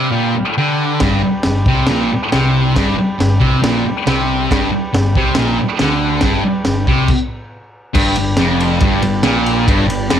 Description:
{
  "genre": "garage rock duo or trio",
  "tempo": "138 BPM",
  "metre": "4/4",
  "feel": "straight",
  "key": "G mixolydian",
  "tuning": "A4 = 440 Hz",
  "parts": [
    { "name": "combo organ", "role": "sustained chords", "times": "0.0-10.2 s", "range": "D4 to A5", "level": "-25 LUFS", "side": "right 1 dB", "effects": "none" },
    { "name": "thick fuzz guitar", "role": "riff", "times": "0.0-10.2 s", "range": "F2 to D3", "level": "-15 LUFS", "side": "equal", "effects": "distortion" },
    { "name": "growling picked electric bass", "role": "bass", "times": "1.0-10.2 s", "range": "F1 to D2", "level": "-20 LUFS", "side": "equal", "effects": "overdrive" },
    { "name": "crunchy breakbeat drum kit", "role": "drums", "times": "1.0-10.2 s", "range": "crash cymbal, kick drum, ride cymbal, snare drum", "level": "-18 LUFS", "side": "equal", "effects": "none" }
  ],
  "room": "light reverb, small room reverb",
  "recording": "none",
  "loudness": "-12 LUFS",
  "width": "side -9 dB against mid",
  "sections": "0.0-8.0 A section; 8.0-10.2 B section",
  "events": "transistor combo organ fill 0.0-1.0; stop 7.1-8.0",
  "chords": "0.0 G"
}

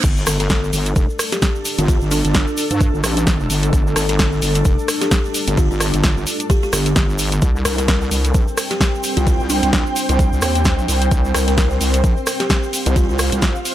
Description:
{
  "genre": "bass house",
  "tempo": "130 BPM",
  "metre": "4/4",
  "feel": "swing 57% on 16ths",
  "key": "unclear",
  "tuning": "A4 = 444 Hz",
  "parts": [
    { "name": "dark analog pad", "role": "sustained chords", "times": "0.0-13.7 s", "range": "G3 to C5", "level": "-34 LUFS", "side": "right 1 dB", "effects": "none" },
    { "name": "wobble bass", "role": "bass", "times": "0.0-13.5 s", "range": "F1 to G2", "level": "-19 LUFS", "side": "equal", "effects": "chorus, tube saturation, sidechain pumping" },
    { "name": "electronic kick drum", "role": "drums", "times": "0.0-13.5 s", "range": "none", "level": "-17 LUFS", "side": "equal", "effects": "overdrive, high-pass filter on kick" },
    { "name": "house drum kit", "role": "drums", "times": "0.0-13.7 s", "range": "crash cymbal, hi-hat, rim click, snare drum", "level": "-21 LUFS", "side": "equal", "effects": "none" },
    { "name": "tube shaker", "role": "percussion", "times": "0.0-13.7 s", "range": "none", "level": "-29 LUFS", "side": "right 3 dB", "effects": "none" },
    { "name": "ethereal airy pad", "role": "texture", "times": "0.9-13.7 s", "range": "C4 to G5", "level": "-25 LUFS", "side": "equal", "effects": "ensemble chorus, built-in reverb, tremolo, sidechain pumping" },
    { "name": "buzzing kalimba", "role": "melody", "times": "0.3-13.2 s", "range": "D4 to Bb4", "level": "-25 LUFS", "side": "left 1 dB", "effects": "digital delay" }
  ],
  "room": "little or no reverb",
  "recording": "high-pass filter",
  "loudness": "-15 LUFS",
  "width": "side -13 dB against mid",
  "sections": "0.0-13.7 A section",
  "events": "drop 0.0-13.7",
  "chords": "0.0 Gsus2; 7.4 C5"
}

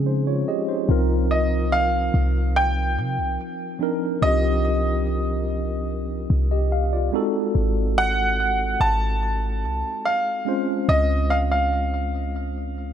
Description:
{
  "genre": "contemporary R&B",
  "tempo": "72 BPM",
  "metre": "4/4",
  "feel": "straight",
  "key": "C phrygian",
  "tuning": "A4 = 441 Hz",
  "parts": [
    { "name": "mellow tine electric piano", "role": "accompaniment", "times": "0.0-12.9 s", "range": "F3 to F5", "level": "-25 LUFS", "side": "equal", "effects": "medium stereo tremolo" },
    { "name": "clean 808-style bass", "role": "bass", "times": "0.0-12.9 s", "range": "Ab1 to Db3", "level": "-23 LUFS", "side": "equal", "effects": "none" },
    { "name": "clear grand piano", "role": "melody", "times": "1.3-12.3 s", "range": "Eb5 to A5", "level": "-24 LUFS", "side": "right 1 dB", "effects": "ping-pong delay" }
  ],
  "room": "light reverb, small room reverb",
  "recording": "low-pass filter",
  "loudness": "-20 LUFS",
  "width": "side -9 dB against mid",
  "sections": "0.9-12.9 A section",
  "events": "none",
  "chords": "0.0 Dbmaj7; 0.9 Cm11; 7.1 Ab7b9; 10.5 Dbmaj7"
}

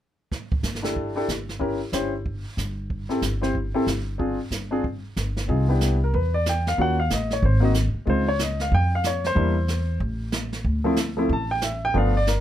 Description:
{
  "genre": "jazz piano trio",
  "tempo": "186 BPM",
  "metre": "4/4",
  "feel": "swing 62% on 8ths",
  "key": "C major",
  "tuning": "A4 = 445 Hz",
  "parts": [
    { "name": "jazz brush drum kit", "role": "drums", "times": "0.3-12.4 s", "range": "brushed snare drum, hi-hat, kick drum, snare drum", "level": "-30 LUFS", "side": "right 2 dB", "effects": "none" },
    { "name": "upright bass", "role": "bass", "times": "0.6-12.4 s", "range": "G1 to F2", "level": "-24 LUFS", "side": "equal", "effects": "none" },
    { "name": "warm baby grand piano", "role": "melody", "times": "0.8-12.4 s", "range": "F3 to A5", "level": "-24 LUFS", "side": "left 1 dB", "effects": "none" }
  ],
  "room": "little or no reverb",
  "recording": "close, detailed microphones",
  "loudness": "-21 LUFS",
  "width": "side -11 dB against mid",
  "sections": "0.3-5.5 A section; 5.5-12.4 B section",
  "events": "none",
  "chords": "0.3 Gsus2; 5.5 Cmaj9; 6.8 Ebm7; 7.4 Ab; 8.1 Dbmaj9; 9.4 Em7b5; 10.0 N.C.; 10.6 D5"
}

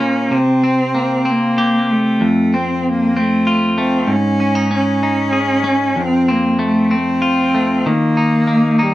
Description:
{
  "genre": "pop",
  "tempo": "64 BPM (dotted quarters)",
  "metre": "6/8",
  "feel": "straight",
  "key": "unclear",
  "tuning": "A4 = 439 Hz",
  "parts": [
    { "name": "bright cello", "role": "melody", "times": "0.0-8.9 s", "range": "G3 to Db4", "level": "-16 LUFS", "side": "equal", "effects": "none" },
    { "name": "clean electric guitar", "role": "accompaniment", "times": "0.0-8.9 s", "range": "F2 to Ab4", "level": "-16 LUFS", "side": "equal", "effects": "none" }
  ],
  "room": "wet small room reverb, RT60 0.5 s",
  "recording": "rough home demo mix",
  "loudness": "-13 LUFS",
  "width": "side -15 dB against mid",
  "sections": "0.0-8.9 A section",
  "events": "none",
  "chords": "0.3 C5; 2.2 F; 4.1 Absus4; 6.0 F; 7.8 Ebsus2"
}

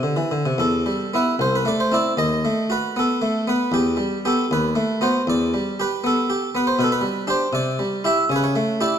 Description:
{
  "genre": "classical, baroque-style suite movement for harpsichord",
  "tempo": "78 BPM (dotted quarters)",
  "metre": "6/8",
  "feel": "rubato",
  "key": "E minor",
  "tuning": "A4 = 439 Hz",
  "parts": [
    { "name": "harpsichord", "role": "solo", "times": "0.0-9.0 s", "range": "C2 to E5", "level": "-18 LUFS", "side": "equal", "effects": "none" }
  ],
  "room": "wet recital hall reverb, RT60 1.7 s",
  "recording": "dark, warm production",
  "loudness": "-19 LUFS",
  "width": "side -8 dB against mid",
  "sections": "0.6-9.0 A section",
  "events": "none",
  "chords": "0.0 G5; 0.6 Em; 1.4 Am/C; 2.2 B7/D#; 3.7 Em; 4.5 B7/D#; 5.3 Em; 6.8 G/B; 7.5 C; 8.3 A7/C#"
}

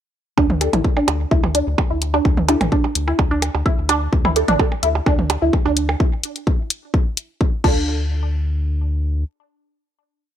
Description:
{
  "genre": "minimal techno",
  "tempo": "128 BPM",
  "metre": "4/4",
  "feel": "straight",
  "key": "D minor",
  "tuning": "A4 = 442 Hz",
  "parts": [
    { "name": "resonant blip pluck", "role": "riff", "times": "0.4-8.1 s", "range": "D4 to E4", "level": "-22 LUFS", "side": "right 1 dB", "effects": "phaser, sidechain pumping, digital delay" },
    { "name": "round analog bass", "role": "bass", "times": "0.4-9.2 s", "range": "A1 to D2", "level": "-21 LUFS", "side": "left 1 dB", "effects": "sidechain pumping" },
    { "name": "electronic kick drum", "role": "drums", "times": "0.4-7.7 s", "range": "none", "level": "-18 LUFS", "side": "left 1 dB", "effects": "none" },
    { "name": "electronic percussion blips and toms", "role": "percussion", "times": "0.4-6.0 s", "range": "none", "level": "-23 LUFS", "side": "right 4 dB", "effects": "digital delay" },
    { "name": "filtered dub chord stab", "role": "stabs", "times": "0.6-4.4, 7.6-10.4 s", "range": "D4 to A4", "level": "-23 LUFS", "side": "right 2 dB", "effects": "phaser, analog chorus, digital delay" },
    { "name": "house drum kit", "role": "drums", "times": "0.6-7.7 s", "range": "crash cymbal, hi-hat", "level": "-24 LUFS", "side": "left 4 dB", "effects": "none" }
  ],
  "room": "little or no reverb",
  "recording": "none",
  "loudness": "-16 LUFS",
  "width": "side -10 dB against mid",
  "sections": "0.4-7.9 groove; 7.9-10.4 final hit",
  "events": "none",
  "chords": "0.4 N.C.; 7.6 Dm"
}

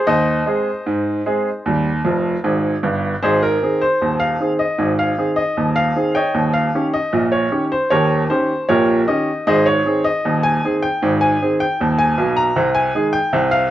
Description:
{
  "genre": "ragtime piano",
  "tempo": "77 BPM",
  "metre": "2/4",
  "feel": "straight",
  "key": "Ab major",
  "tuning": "A4 = 440 Hz",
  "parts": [
    { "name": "bright upright piano", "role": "solo", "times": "0.0-13.7 s", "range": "Eb1 to Bb5", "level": "-15 LUFS", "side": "equal", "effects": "none" }
  ],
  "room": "light reverb",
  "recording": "worn, warbling old tape, cassette tape, warbly pitch drift",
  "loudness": "-15 LUFS",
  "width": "side -13 dB against mid",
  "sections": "0.0-3.2 A section; 3.2-13.7 B section",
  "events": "upright piano fill 2.1-3.2",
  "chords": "0.1 Ab/Eb; 1.7 Eb; 3.2 Ab; 6.3 Eb7; 9.5 Ab; 12.6 Ab/C"
}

